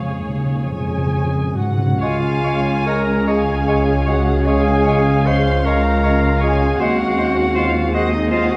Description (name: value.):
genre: classical, slow romantic movement for symphony orchestra.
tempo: 42-54 BPM (dotted quarters).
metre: 12/8.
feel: rubato.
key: Db major.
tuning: A4 = 440 Hz.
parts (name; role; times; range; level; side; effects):
muted studio violin section; melody; 0.0-8.6 s; Eb5 to Ab5; -34 LUFS; equal; none.
muted chamber violin section; second line; 0.0-8.6 s; Ab4 to C6; -29 LUFS; equal; none.
muted studio viola section; accompaniment; 0.0-8.6 s; C4 to Db5; -28 LUFS; equal; none.
muted chamber cello section; bass; 0.0-8.6 s; Db2 to Ab2; -26 LUFS; equal; none.
timpani; percussion; 0.0-2.0 s; Db3; -24 LUFS; equal; none.
mellow clarinet; second line; 0.6-8.6 s; Eb4 to C5; -25 LUFS; equal; none.
bright silver concert flute; second line; 2.0-8.6 s; Db5 to Ab5; -28 LUFS; equal; none.
clear oboe; second line; 2.0-8.5 s; C5 to Db5; -30 LUFS; equal; none.
warm bassoon; accompaniment; 2.0-8.5 s; Ab3; -29 LUFS; equal; none.
mellow French horn section; sustained chords; 2.0-8.6 s; Ab3 to Db4; -26 LUFS; equal; none.
muted chamber double bass section; bass; 2.0-8.6 s; Db2 to Eb2; -23 LUFS; equal; none.
room: moderate scoring stage reverb, RT60 2.1 s.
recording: dark, warm production.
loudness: -17 LUFS.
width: mono.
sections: 0.0-2.0 A section; 2.0-8.6 A section.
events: timpani fill 0.0-2.0.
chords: 0.0 Db; 6.8 Ab7/Eb.